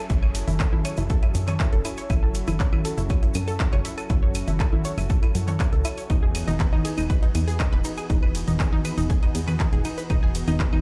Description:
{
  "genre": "melodic techno",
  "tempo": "120 BPM",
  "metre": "4/4",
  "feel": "straight",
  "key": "F# dorian",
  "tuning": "A4 = 443 Hz",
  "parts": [
    { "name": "lush unison pad", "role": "sustained chords", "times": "0.0-10.8 s", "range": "E3 to A4", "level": "-36 LUFS", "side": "equal", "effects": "chorus, sidechain pumping" },
    { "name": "downlifter", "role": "sound effects", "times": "0.0-2.1 s", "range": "none", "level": "-51 LUFS", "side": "equal", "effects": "none" },
    { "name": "unison pluck", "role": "arpeggios", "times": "0.1-10.8 s", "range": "D#4 to C#6", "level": "-35 LUFS", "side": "equal", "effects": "cassette tape, sidechain pumping, dub echo" },
    { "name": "plucky analog bass", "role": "bass", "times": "0.1-10.8 s", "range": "E1 to F#2", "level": "-29 LUFS", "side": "equal", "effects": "sidechain pumping" },
    { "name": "electronic kick drum", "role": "drums", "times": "0.1-10.7 s", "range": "none", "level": "-24 LUFS", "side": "equal", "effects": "none" },
    { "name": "techno drum kit", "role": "drums", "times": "0.1-10.8 s", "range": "claves, congas, handclaps, hi-hat, ride cymbal", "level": "-33 LUFS", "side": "equal", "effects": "sidechain pumping on hats, sidechain pumping on perc, sidechain pumping on cymbals" },
    { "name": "tube shaker", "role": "percussion", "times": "0.1-10.7 s", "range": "none", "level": "-43 LUFS", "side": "equal", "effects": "none" }
  ],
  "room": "little or no reverb",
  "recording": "played on a big sound system in a bare room, large studio reverb",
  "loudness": "-23 LUFS",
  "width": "mono",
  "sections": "0.0-10.8 A section",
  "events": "none",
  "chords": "0.0 F#m7; 6.1 Emaj7",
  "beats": "| 0.10 0.60 1.10 1.60 | 2.10 2.60 3.10 3.60 | 4.10 4.60 5.10 5.60 | 6.10 6.60 7.10 7.60 | 8.10 8.60 9.10 9.60 | 10.10 10.60"
}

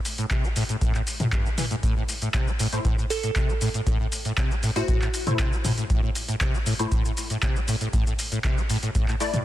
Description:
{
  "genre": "acid house",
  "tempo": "118 BPM",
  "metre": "4/4",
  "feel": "straight",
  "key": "unclear",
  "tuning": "A4 = 440 Hz",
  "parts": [
    { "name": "electro analog drum machine", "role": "drums", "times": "0.1-9.4 s", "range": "handclaps, hi-hat, shaker, toms", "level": "-29 LUFS", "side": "left 1 dB", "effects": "none" },
    { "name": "acid bass, saw", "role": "riff", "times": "0.2-9.4 s", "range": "G2 to A3", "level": "-28 LUFS", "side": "equal", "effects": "ensemble chorus" },
    { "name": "electronic kick drum", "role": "drums", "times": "0.3-9.1 s", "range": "none", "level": "-25 LUFS", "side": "equal", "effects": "none" },
    { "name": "filtered dub chord stab", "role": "stabs", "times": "2.7-9.3 s", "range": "A3 to D5", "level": "-30 LUFS", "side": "left 2 dB", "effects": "phaser, ensemble chorus, tape echo" },
    { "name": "glassy wavetable pluck", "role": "melody", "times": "3.1-5.3 s", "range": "F#4 to A4", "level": "-32 LUFS", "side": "right 3 dB", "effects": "chorus, tape echo" }
  ],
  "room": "digital ambience",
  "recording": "dense, heavily limited modern master",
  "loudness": "-22 LUFS",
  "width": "side -14 dB against mid",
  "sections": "0.0-9.4 A section",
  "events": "none",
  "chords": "0.0 Am",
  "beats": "0.31 0.81 1.32 | 1.83 2.34 2.85 3.36 | 3.87 4.38 4.88 5.39 | 5.90 6.41 6.92 7.42 | 7.93 8.44 8.95"
}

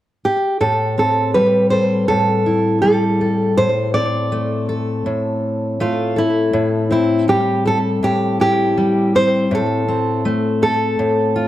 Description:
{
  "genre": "pop",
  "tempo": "81 BPM",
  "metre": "4/4",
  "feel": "straight",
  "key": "A minor",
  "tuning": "A4 = 440 Hz",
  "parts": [
    { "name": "nylon-string guitar", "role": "melody", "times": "0.2-11.5 s", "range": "E4 to D5", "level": "-17 LUFS", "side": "right 1 dB", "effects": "slapback echo" },
    { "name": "fingerpicked steel-string acoustic guitar", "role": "accompaniment", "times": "0.6-11.5 s", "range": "A2 to A4", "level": "-18 LUFS", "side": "left 1 dB", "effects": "none" }
  ],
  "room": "light reverb",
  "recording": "none",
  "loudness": "-15 LUFS",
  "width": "side -13 dB against mid",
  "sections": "0.6-6.5 A section; 6.5-11.5 B section",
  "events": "none",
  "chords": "0.0 N.C.; 0.6 Am7; 3.6 D5/A; 6.5 Am7; 9.5 F/A (rootless)",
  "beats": "| 0.62 1.36 2.10 2.84 | 3.58 4.32 5.07 5.81 | 6.55 7.29 8.03 8.77 | 9.51 10.25 10.99"
}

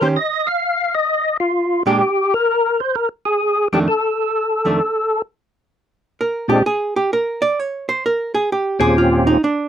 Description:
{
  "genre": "jazz",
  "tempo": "130 BPM",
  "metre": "4/4",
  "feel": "swing 66% on 8ths",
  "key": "unclear",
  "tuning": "A4 = 440 Hz",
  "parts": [
    { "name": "percussive tonewheel organ", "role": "melody", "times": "0.0-9.4 s", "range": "Eb2 to F5", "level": "-16 LUFS", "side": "left 1 dB", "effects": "slow rotary speaker, overdrive, chorus vibrato" },
    { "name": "archtop guitar, miked and amplified", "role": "accompaniment", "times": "0.0-9.7 s", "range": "F2 to D5", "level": "-17 LUFS", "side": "right 2 dB", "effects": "none" }
  ],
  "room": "light reverb",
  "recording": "dry, close 1970s-style studio recording",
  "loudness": "-16 LUFS",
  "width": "side -9 dB against mid",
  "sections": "0.0-5.7 A section; 5.7-9.7 B section",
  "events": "hollow-body jazz guitar solo 5.7-9.7",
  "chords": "0.2 Ebadd9; 2.0 F6; 5.7 Bb7(no3); 7.6 Eb13",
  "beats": "| 0.18 0.64 1.10 1.56 | 2.02 2.49 2.95 3.41 | 3.87 4.33 4.79 5.26 | 5.72 6.18 6.64 7.10 | 7.56 8.02 8.49 8.95 | 9.41"
}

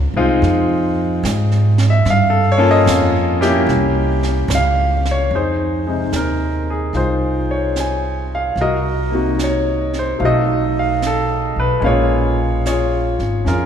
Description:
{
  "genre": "jazz ballad",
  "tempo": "74 BPM",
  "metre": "4/4",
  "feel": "swing 67% on 8ths",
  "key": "F minor",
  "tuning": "A4 = 440 Hz",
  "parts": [
    { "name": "clear grand piano", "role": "accompaniment", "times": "0.0-13.7 s", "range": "C3 to Ab5", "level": "-17 LUFS", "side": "left 1 dB", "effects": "none" },
    { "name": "upright bass", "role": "bass", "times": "0.0-13.7 s", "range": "Ab1 to Ab2", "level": "-18 LUFS", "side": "right 1 dB", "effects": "none" },
    { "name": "jazz brush drum kit", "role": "drums", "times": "0.4-13.7 s", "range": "brushed snare drum, hi-hat, snare drum", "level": "-29 LUFS", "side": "right 3 dB", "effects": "none" }
  ],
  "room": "wet church reverb, RT60 3.2 s",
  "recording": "recorded in a church or concert hall",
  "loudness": "-14 LUFS",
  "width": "side -8 dB against mid",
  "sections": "0.0-5.3 A section; 5.3-13.7 B section",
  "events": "none",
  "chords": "0.0 Dbmaj7 (rootless); 2.1 Gm7b5; 3.7 C7b9; 5.3 Fm7; 8.6 Cm7b5; 10.2 B7#11; 11.8 Bbm7",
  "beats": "0.44 1.25 | 2.06 2.87 3.68 4.50 | 5.31 6.12 6.94 7.75 | 8.57 9.38 10.20 11.01 | 11.83 12.64 13.46"
}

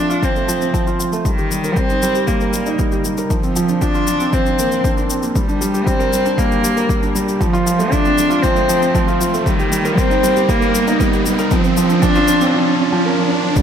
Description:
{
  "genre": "piano and strings electronica",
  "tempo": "117 BPM",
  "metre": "4/4",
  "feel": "straight",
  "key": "unclear",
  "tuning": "A4 = 440 Hz",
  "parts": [
    { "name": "warm cello", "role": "melody", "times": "0.0-12.5 s", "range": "Eb3 to D4", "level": "-18 LUFS", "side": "equal", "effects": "ping-pong delay" },
    { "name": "felt-muted upright piano", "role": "riff", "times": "0.0-13.6 s", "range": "F3 to Bb4", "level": "-18 LUFS", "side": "right 1 dB", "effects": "ping-pong delay" },
    { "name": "dark detuned saw bass", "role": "bass", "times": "0.0-13.6 s", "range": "none", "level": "barely audible", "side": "none", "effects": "none" },
    { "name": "riser", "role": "sound effects", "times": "0.2-13.6 s", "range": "none", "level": "-24 LUFS", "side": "right 2 dB", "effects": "none" },
    { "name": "shaker", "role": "drums", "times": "0.1-13.6 s", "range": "none", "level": "-28 LUFS", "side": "left 5 dB", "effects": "high-pass filter on perc" },
    { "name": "electronic kick drum", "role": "drums", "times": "0.2-13.6 s", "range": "none", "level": "-20 LUFS", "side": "equal", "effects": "none" }
  ],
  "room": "moderate echo chamber reverb, RT60 2.3 s",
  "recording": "none",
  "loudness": "-14 LUFS",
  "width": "side -8 dB against mid",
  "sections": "0.0-13.6 A section",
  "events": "build-up 0.0-13.6; riser 0.2-13.6; break 12.5-13.6",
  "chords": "0.0 F; 1.3 Eb; 3.3 Bbadd9; 5.4 Gm; 7.4 F; 9.5 Eb; 11.5 Bbadd9",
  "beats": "0.23 0.74 | 1.25 1.77 2.28 2.79 | 3.31 3.82 4.33 4.84 | 5.36 5.87 6.38 6.90 | 7.41 7.92 8.44 8.95 | 9.46 9.97 10.49 11.00 | 11.51 12.03 12.54 13.05 | 13.56"
}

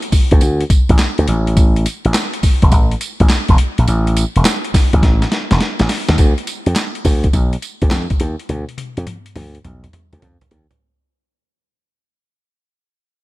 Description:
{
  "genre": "R&B, new jack swing",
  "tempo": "104 BPM",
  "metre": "4/4",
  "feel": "swing 67% on 16ths",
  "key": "D dorian",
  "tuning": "A4 = 440 Hz",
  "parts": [
    { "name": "boom bap sampler-style drum kit", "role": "drums", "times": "0.0-10.8 s", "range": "handclaps, hi-hat, kick drum, snare drum, tambourine, toms", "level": "-14 LUFS", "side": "equal", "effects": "none" },
    { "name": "slap bass with an envelope filter", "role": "bass", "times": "0.1-10.7 s", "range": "E1 to F2", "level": "-15 LUFS", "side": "equal", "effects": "none" }
  ],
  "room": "little or no reverb",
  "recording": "none",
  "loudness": "-12 LUFS",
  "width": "side -19 dB against mid",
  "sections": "0.0-6.2 A section; 6.2-10.8 B section",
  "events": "drum fill 5.0-6.2, 8.5-10.8; fade-out 6.2-10.8",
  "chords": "none",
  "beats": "0.41 0.99 | 1.57 2.14 2.72 3.30 | 3.88 4.45 5.03 5.61 | 6.18 6.76 7.34 7.91 | 8.49 9.07 9.64 10.22"
}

